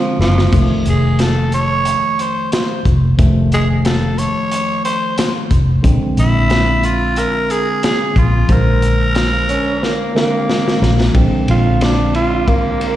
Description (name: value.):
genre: straight-eighth soul blues.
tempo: 90 BPM.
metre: 4/4.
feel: swing 55% on 16ths.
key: Bb mixolydian.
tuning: A4 = 440 Hz.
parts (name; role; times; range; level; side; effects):
growling tenor saxophone; second line; 0.0-0.7, 9.5-13.0 s; F3 to F4; -19 LUFS; right 2 dB; slapback echo, tape echo.
overdriven tine electric piano; accompaniment; 0.0-13.0 s; D3 to C5; -20 LUFS; right 2 dB; slapback echo.
vintage muted fingered electric bass; bass; 0.2-12.5 s; F1 to Bb1; -15 LUFS; left 1 dB; none.
crunchy breakbeat drum kit; drums; 0.2-13.0 s; crash cymbal, hi-hat, kick drum, ride cymbal, snare drum; -18 LUFS; left 1 dB; none.
growling tenor saxophone; melody; 0.9-10.5 s; E4 to Db5; -18 LUFS; equal; slapback echo, tape echo.
room: small room ambience.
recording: live gig heard through the venue's PA, recital hall reverb.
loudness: -12 LUFS.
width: side -13 dB against mid.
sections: 0.0-11.2 A section; 11.2-13.0 B section.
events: drum fill 0.2-0.5, 9.8-11.2; tenor saxophone solo 11.2-13.0.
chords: 0.0 Bb9 (rootless); 0.5 F7; 5.8 Bb9.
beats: | 0.53 1.19 1.86 2.52 | 3.19 3.85 4.51 5.18 | 5.84 6.51 7.17 7.83 | 8.50 9.16 9.82 10.49 | 11.15 11.81 12.48.